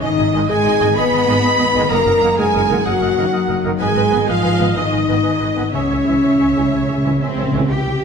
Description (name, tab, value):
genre	cinematic, heroic adventure film score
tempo	126 BPM (dotted quarters)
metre	12/8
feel	straight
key	unclear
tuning	A4 = 440 Hz
part	warm symphonic violin section	melody	0.0-8.0 s	B#4 to B5	-27 LUFS	left 2 dB	none
part	flute section	second line	0.0-7.6 s	F#5 to G#5	-33 LUFS	right 1 dB	none
part	rich studio violin section	second line	0.0-8.0 s	B#4 to B5	-28 LUFS	left 3 dB	none
part	warm clarinet	second line	0.0-7.6 s	A#4 to D#5	-30 LUFS	left 2 dB	none
part	warm oboe	second line	0.0-7.6 s	D#5 to E5	-31 LUFS	right 1 dB	none
part	warm symphonic viola section	accompaniment	0.0-8.0 s	E3 to E5	-28 LUFS	equal	none
part	dark French horn section	sustained chords	0.0-8.0 s	C#4 to B4	-18 LUFS	left 2 dB	none
part	concert harp	arpeggios	0.0-8.0 s	F#2 to A#5	-26 LUFS	left 10 dB	none
part	clear trumpet section	stabs	0.0-7.2 s	C#5 to B5	-23 LUFS	right 5 dB	none
part	dark symphonic cello section	bass	0.0-8.0 s	C#3 to G4	-23 LUFS	right 3 dB	none
part	warm studio double bass section	bass	0.0-8.0 s	F#1 to C#2	-24 LUFS	right 4 dB	none
part	mellow trombone section	sustained chords	0.3-7.6 s	D#3 to B3	-28 LUFS	right 5 dB	none
part	timpani	percussion	1.9-2.3, 5.7-7.7 s	F#2 to C#3	-22 LUFS	right 1 dB	none
room	wet recital hall reverb, RT60 1.8 s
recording	none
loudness	-14 LUFS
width	side -6 dB against mid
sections	0.0-7.7 A section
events	timpani fill 5.7-7.7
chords	0.0 G#m; 1.9 D#m/F#; 3.8 G#m; 5.7 C#m